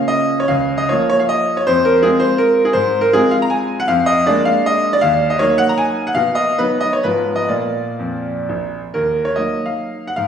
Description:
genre	classical, romantic triple-time dance for piano with dotted rhythms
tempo	115-173 BPM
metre	3/4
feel	rubato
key	Eb minor from 3.9 s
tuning	A4 = 438 Hz
part	bright grand piano	solo	0.0-10.3 s	Bb1 to Bb5	-14 LUFS	equal	none
room	wet recital hall reverb, RT60 1.3 s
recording	heard from further back in the room, studio reverb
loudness	-14 LUFS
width	side -8 dB against mid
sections	0.0-8.9 A section; 8.9-10.3 B section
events	none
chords	0.5 Bbm/Db; 1.7 Fm; 2.8 Fm/Ab; 3.9 Bb7/F; 5.0 Ebm; 6.2 B; 7.0 Fdim/Ab; 7.5 Bb; 8.9 Ebm

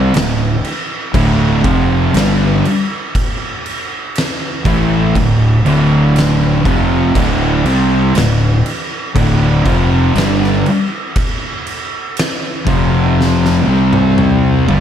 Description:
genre	stoner and doom metal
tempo	60 BPM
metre	4/4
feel	straight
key	D minor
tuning	A4 = 440 Hz
part	distorted electric guitar	riff	0.0-14.8 s	D2 to C4	-19 LUFS	right 1 dB	overdrive
part	thick fuzz guitar	riff	0.0-14.8 s	D2 to C4	-16 LUFS	left 6 dB	distortion
part	thick fuzz guitar	riff	0.0-14.8 s	D2 to C4	-16 LUFS	right 6 dB	distortion
part	fuzz fingered electric bass	bass	0.0-14.8 s	D1 to C2	-18 LUFS	equal	overdrive
part	oversized low-tuned drum kit	drums	0.1-14.8 s	crash cymbal, kick drum, snare drum, toms	-18 LUFS	equal	none
room	light reverb, small room ambience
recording	dark, warm production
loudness	-11 LUFS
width	side -9 dB against mid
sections	0.0-14.8 A section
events	drum fill 13.2-14.8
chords	0.0 Dm; 12.7 F5; 13.7 C5

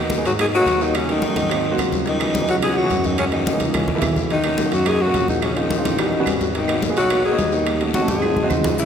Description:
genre	Afro-Cuban jazz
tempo	214 BPM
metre	4/4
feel	straight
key	G# minor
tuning	A4 = 439 Hz
part	growling alto saxophone	melody	0.0-8.9 s	C#4 to G#4	-22 LUFS	left 1 dB	none
part	clear tenor saxophone	second line	0.0-8.6 s	C#3 to G#3	-26 LUFS	left 4 dB	none
part	warm baby grand piano	accompaniment	0.0-8.8 s	E3 to A4	-24 LUFS	right 2 dB	none
part	bongos	percussion	0.1-8.9 s	none	-33 LUFS	left 4 dB	none
part	congas	percussion	0.1-8.9 s	none	-26 LUFS	equal	none
part	guiro	percussion	0.1-8.9 s	none	-34 LUFS	left 5 dB	none
part	breathy tuba	bass	0.2-8.9 s	G#1 to G#2	-25 LUFS	equal	none
part	timbales	percussion	0.3-8.7 s	none	-30 LUFS	right 4 dB	none
part	claves	percussion	0.4-8.6 s	none	-35 LUFS	right 8 dB	none
part	maracas	percussion	8.8-8.9 s	none	-29 LUFS	left 8 dB	none
room	wet scoring stage reverb, RT60 1.5 s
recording	recorded in a church or concert hall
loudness	-17 LUFS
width	side -8 dB against mid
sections	0.0-8.8 A section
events	drum fill 3.6-4.3, 7.9-8.8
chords	0.0 G#m9; 0.9 D#m7b5; 1.5 G#7; 2.1 C#m11; 3.2 F#13; 4.3 Bmaj9 (rootless); 5.4 A#m9; 6.0 A13; 6.5 G#m9; 7.7 D#m7b5; 8.2 G#7

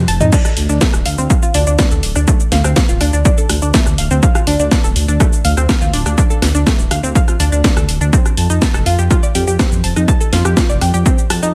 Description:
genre	melodic techno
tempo	123 BPM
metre	4/4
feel	straight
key	D phrygian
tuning	A4 = 440 Hz
part	dark detuned saw bass	bass	0.0-11.5 s	D1 to F2	-17 LUFS	equal	sidechain pumping
part	analog pluck	arpeggios	0.1-11.5 s	A3 to A6	-22 LUFS	equal	chorus, phaser, sidechain pumping, tape echo
part	house drum kit	drums	0.1-11.5 s	crash cymbal, hi-hat, rim click, shaker, snare drum, toms	-21 LUFS	equal	none
part	electronic kick drum	drums	0.3-11.2 s	none	-16 LUFS	equal	overdrive
room	little or no reverb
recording	none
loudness	-14 LUFS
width	mono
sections	0.0-11.5 A section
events	break 0.0-0.3; drum fill 0.0-0.3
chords	0.3 Dm; 8.1 F

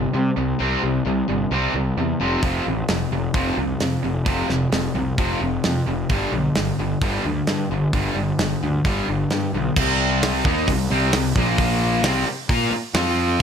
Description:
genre	hard rock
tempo	131 BPM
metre	4/4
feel	straight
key	unclear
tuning	A4 = 440 Hz
part	distorted electric guitar	riff	0.0-13.4 s	F2 to Bb4	-24 LUFS	left 9 dB	distortion
part	overdriven electric guitar	riff	0.0-13.4 s	F2 to Bb4	-25 LUFS	right 11 dB	none
part	fuzz picked electric bass	bass	0.0-13.4 s	F1 to C3	-24 LUFS	equal	overdrive
part	tight metal drum kit	drums	2.4-13.1 s	crash cymbal, hi-hat, kick drum, snare drum	-24 LUFS	right 1 dB	none
room	light reverb, studio reverb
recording	none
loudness	-19 LUFS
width	side -7 dB against mid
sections	0.0-9.8 A section; 9.8-13.4 B section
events	none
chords	0.0 C5; 2.2 F5; 6.1 G5; 9.8 C5; 11.4 Bb5; 12.0 C5; 12.9 F5

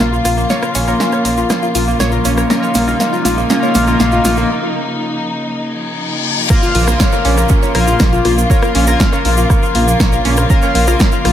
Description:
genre	melodic techno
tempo	120 BPM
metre	4/4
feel	straight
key	Bb minor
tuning	A4 = 440 Hz
part	warm studio string section	sustained chords	0.0-11.3 s	Db3 to F4	-20 LUFS	equal	sidechain pumping
part	analog pluck	arpeggios	0.0-11.3 s	Bb3 to Db5	-19 LUFS	equal	chorus, sidechain pumping, tape echo
part	sync-sweep polysynth	stabs	0.0-11.3 s	Bb3 to Bb4	-18 LUFS	left 3 dB	chorus, sidechain pumping, dub echo
part	dark detuned saw bass	bass	0.0-11.3 s	Bb1	-16 LUFS	right 1 dB	tube saturation, sidechain pumping
part	punchy analog drum machine	drums	0.0-11.3 s	crash cymbal, hi-hat, rim click, snare drum	-19 LUFS	equal	sidechain pumping on hats, sidechain pumping on cymbals, dub echo
part	tube shaker	percussion	0.0-11.2 s	none	-27 LUFS	right 6 dB	none
part	riser, reverse cymbal and downlifter	sound effects	1.0-10.5 s	none	-24 LUFS	left 1 dB	none
part	electronic kick drum	drums	6.5-11.1 s	none	-13 LUFS	equal	none
room	wet spring reverb, RT60 2.1 s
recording	echo-heavy mix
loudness	-11 LUFS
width	side -10 dB against mid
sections	0.0-6.5 A section; 6.5-11.3 B section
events	build-up 0.0-6.5; drum fill 0.0-4.5; filter sweep on analog polysynth 0.0-6.5; break 4.5-6.5; reverse cymbal 5.7-6.5; drop 6.5-11.3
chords	0.0 Bbm

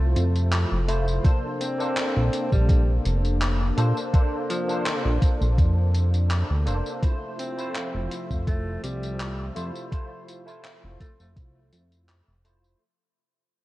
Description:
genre	vaporwave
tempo	83 BPM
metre	4/4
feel	swing 53% on 16ths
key	F major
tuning	A4 = 442 Hz
part	barky tine electric piano	accompaniment	0.0-12.8 s	A3 to C5	-31 LUFS	equal	overdrive, ensemble chorus, analog delay
part	warbly tape-like pad	sustained chords	0.0-12.8 s	C3 to E5	-35 LUFS	left 2 dB	chorus, built-in reverb
part	chorused synth bass	bass	0.0-12.8 s	F1 to Bb2	-23 LUFS	equal	none
part	gated 80s digital drum machine	drums	0.2-12.8 s	handclaps, hi-hat, tambourine	-33 LUFS	equal	gated reverb
part	electronic kick drum	drums	1.2-11.5 s	none	-21 LUFS	equal	none
part	clear alto saxophone	melody	1.6-11.3 s	F3 to C4	-34 LUFS	equal	vintage 12-bit sampler grit, tape echo
room	little or no reverb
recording	cassette tape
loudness	-22 LUFS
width	side -17 dB against mid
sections	0.0-12.8 A section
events	fade-out 5.1-12.8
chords	0.0 Fmaj7; 1.2 Bbmaj9; 7.0 Fmaj7

